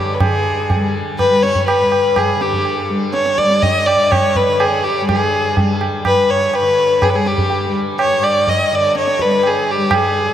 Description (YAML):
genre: indian classical, Hindustani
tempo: 124 BPM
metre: 5/4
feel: straight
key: unclear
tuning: A4 = 443 Hz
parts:
  - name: rich violin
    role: melody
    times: 0.0-10.3 s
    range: G4 to Eb5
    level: -15 LUFS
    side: left 1 dB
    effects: none
  - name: tanpura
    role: drone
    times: 0.0-10.3 s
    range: G2 to G3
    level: -23 LUFS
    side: left 1 dB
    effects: none
  - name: tabla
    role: percussion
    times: 0.2-10.1 s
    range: none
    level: -20 LUFS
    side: right 2 dB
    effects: none
room: wet cathedral reverb, RT60 5.2 s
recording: in a vast, echoing space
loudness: -13 LUFS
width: side -10 dB against mid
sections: 0.2-10.3 A section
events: none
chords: none